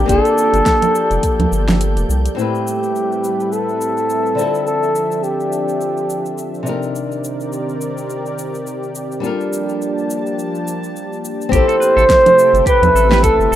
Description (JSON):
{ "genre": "sunset chillout", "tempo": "105 BPM", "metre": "4/4", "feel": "swing 57% on 16ths", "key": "A phrygian", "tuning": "A4 = 440 Hz", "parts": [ { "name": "breathy flugelhorn", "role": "melody", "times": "0.0-6.7, 11.5-13.6 s", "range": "G4 to C5", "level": "-14 LUFS", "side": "right 1 dB", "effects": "digital delay" }, { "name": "flamenco guitar", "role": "accompaniment", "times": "0.0-13.5 s", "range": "A2 to B4", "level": "-22 LUFS", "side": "moving between left 5 dB and right 3 dB", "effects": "auto-pan, digital delay" }, { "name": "lush unison pad", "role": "sustained chords", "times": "0.0-13.6 s", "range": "C3 to A5", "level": "-24 LUFS", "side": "left 1 dB", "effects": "chorus" }, { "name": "round analog bass", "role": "bass", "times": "0.0-2.3, 11.5-13.6 s", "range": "D1 to E2", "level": "-17 LUFS", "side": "equal", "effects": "none" }, { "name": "wind-like tuned noise texture", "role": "texture", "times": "0.0-2.4 s", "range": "G6", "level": "-39 LUFS", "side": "right 1 dB", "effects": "built-in reverb" }, { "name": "deep house drum kit", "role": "drums", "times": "0.1-13.6 s", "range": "cabasa, congas, hi-hat, snare drum", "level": "-22 LUFS", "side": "right 2 dB", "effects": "none" }, { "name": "electronic kick drum", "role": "drums", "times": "0.1-1.4, 11.5-13.4 s", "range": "none", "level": "-19 LUFS", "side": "equal", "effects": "none" }, { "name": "clean electric guitar", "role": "arpeggios", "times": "11.5-13.6 s", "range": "G4 to B4", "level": "-24 LUFS", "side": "right 3 dB", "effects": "lush chorus, digital delay" } ], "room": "light reverb", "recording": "rough home demo mix", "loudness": "-14 LUFS", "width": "side -12 dB against mid", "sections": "0.0-2.4 A section; 2.4-11.5 B section; 11.5-13.6 C section", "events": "break 1.8-2.4", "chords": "0.1 Gm9; 2.4 Am9; 4.4 Dm9; 6.7 Cm9; 9.2 Gm9; 11.5 Am9", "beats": "| 0.09 0.66 1.23 1.80 | 2.38 2.95 3.52 4.09 | 4.66 5.23 5.80 6.38 | 6.95 7.52 8.09 8.66 | 9.23 9.80 10.38 10.95 | 11.52 12.09 12.66 13.23" }